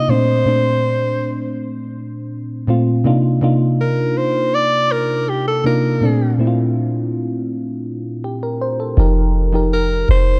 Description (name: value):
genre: contemporary R&B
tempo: 81 BPM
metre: 4/4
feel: straight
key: unclear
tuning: A4 = 440 Hz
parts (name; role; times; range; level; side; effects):
- mellow alto saxophone; melody; 0.0-10.4 s; G4 to Eb5; -21 LUFS; equal; analog delay
- mellow FM electric piano; accompaniment; 0.0-10.4 s; Bb2 to C5; -20 LUFS; equal; chorus
- soft 808-style bass; bass; 9.0-10.4 s; F1; -17 LUFS; equal; none
room: light reverb, studio ambience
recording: none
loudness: -17 LUFS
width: mono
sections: 0.0-9.0 A section; 9.0-10.4 B section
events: none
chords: 0.1 Bbmaj9; 3.0 Cm11; 6.0 Bbmaj9; 9.0 F9sus4